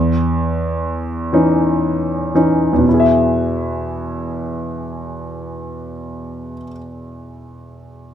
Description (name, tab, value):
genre	folk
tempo	38-43 BPM (dotted quarters)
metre	6/8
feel	straight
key	E major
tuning	A4 = 440 Hz
part	clear concert grand piano	melody	0.0-8.1 s	E2 to E5	-16 LUFS	equal	none
room	light reverb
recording	close, detailed microphones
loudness	-15 LUFS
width	side -9 dB against mid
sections	0.0-2.9 A section; 2.9-6.0 B section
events	slowing down 0.0-2.9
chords	0.0 C#madd9/E; 2.9 E